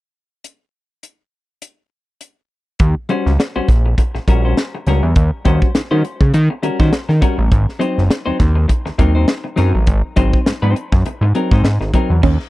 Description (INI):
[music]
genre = funk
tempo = 102 BPM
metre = 4/4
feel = swing 56% on 16ths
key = unclear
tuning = A4 = 439 Hz
[part]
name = crisp fusion drum kit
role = drums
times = 0.4-12.5 s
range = crash cymbal, hi-hat, kick drum, snare drum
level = -15 LUFS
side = equal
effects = none
[part]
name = fat analog bass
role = bass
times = 2.8-12.4 s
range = Gb1 to Eb3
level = -14 LUFS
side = equal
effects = none
[part]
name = semi-hollow electric guitar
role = accompaniment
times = 3.1-12.2 s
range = Gb3 to C5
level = -21 LUFS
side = left 2 dB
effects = spring reverb
[part]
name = clean electric guitar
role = riff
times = 12.2-12.4 s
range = Db4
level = -18 LUFS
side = right 9 dB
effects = none
[sound]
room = little or no reverb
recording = dry, close 1970s-style studio recording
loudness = -13 LUFS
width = side -18 dB against mid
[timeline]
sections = 0.4-2.8 A section; 2.8-12.2 B section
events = none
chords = 0.4 N.C.; 2.8 Eb7#9; 7.5 Ab9